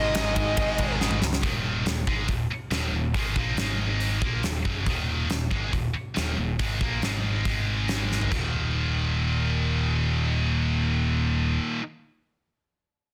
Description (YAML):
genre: hard rock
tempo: 139 BPM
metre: 4/4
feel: straight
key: unclear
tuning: A4 = 440 Hz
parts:
  - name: nasal lead guitar with a parked wah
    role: melody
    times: 0.0-1.0 s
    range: Eb5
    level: -30 LUFS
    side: equal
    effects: overdrive, tape echo
  - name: distorted electric guitar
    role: riff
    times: 0.0-1.2 s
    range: Ab2 to Ab3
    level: -34 LUFS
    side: equal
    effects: overdrive
  - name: high-gain distorted guitar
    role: riff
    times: 0.0-11.8 s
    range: Eb2 to Bb3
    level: -30 LUFS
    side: equal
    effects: distortion
  - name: overdriven picked electric bass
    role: bass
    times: 0.0-11.6 s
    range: Eb1 to Db2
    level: -30 LUFS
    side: equal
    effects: none
  - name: huge arena drum kit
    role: drums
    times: 0.1-8.4 s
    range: hi-hat, kick drum, ride cymbal, snare drum, splash cymbal, toms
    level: -31 LUFS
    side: equal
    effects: none
room: light reverb, small room ambience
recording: dense, heavily limited modern master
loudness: -26 LUFS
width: mono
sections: 0.0-1.4 A section; 1.4-8.3 B section; 8.3-11.8 C section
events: drum fill 1.0-1.4, 8.1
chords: 0.0 Ab5; 1.4 Eb5; 3.6 Ab5; 4.2 Ebm; 7.0 Ab5; 8.3 Eb5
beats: 0.15 0.58 1.00 | 1.43 1.86 2.29 2.71 | 3.15 3.57 4.00 4.43 | 4.87 5.30 5.73 6.16 | 6.59 7.02 7.45 7.88 | 8.31 8.75 9.18 9.61 | 10.04 10.48 10.91 11.34